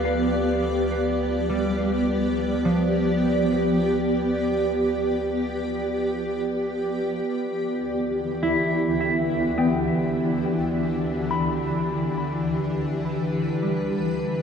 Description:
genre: ambient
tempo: 52 BPM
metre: 3/4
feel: straight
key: unclear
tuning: A4 = 440 Hz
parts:
  - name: granular cloud pad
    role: sustained chords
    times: 0.0-14.4 s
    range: D2 to D5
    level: -23 LUFS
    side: equal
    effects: built-in reverb
  - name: mellow electric guitar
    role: arpeggios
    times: 0.0-14.4 s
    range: F3 to B5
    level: -27 LUFS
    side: left 1 dB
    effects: phaser, ping-pong delay
  - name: warm sub bass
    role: bass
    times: 0.0-7.2 s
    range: D2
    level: -34 LUFS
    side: equal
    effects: none
  - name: bowed-like drone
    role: drone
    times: 0.0-14.4 s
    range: D3 to D5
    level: -36 LUFS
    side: right 1 dB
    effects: built-in reverb
room: wet cathedral reverb, RT60 5.8 s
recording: in a vast, echoing space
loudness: -22 LUFS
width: side -7 dB against mid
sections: 0.0-7.3 A section; 7.3-14.4 B section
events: fade-out on sub bass 0.0-7.3; fade-in on synth drone 7.3-14.4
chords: 0.0 G7/D; 7.3 Em7/D; 10.7 G6/D

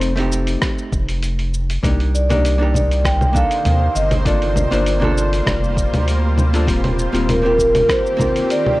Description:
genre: sunset chillout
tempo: 99 BPM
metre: 4/4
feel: straight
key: G minor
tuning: A4 = 440 Hz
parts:
  - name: archtop guitar, miked and amplified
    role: accompaniment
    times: 0.0-8.8 s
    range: A3 to C5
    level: -23 LUFS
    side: left 1 dB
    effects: auto-pan, tape echo
  - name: round analog bass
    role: bass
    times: 0.0-7.8 s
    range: Eb1 to Eb2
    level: -18 LUFS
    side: equal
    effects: none
  - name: dusty soul sampler-style drum kit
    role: drums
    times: 0.0-8.8 s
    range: congas, hi-hat, rim click, shaker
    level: -23 LUFS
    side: equal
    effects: none
  - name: electronic kick drum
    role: drums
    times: 0.6-8.3 s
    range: none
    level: -22 LUFS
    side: equal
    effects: none
  - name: shimmering ambient pad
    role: sustained chords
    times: 2.8-8.8 s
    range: C3 to C5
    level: -26 LUFS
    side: equal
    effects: chorus, built-in reverb
  - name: vibraphone with soft mallets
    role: melody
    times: 2.1-8.8 s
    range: Bb4 to G5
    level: -19 LUFS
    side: right 1 dB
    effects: digital delay
room: light reverb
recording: worn, warbling old tape, cassette tape, warbly pitch drift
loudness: -15 LUFS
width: side -18 dB against mid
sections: 0.0-8.8 A section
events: none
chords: 0.0 F7; 1.8 Cm9; 4.3 Gm7; 6.7 Eb6

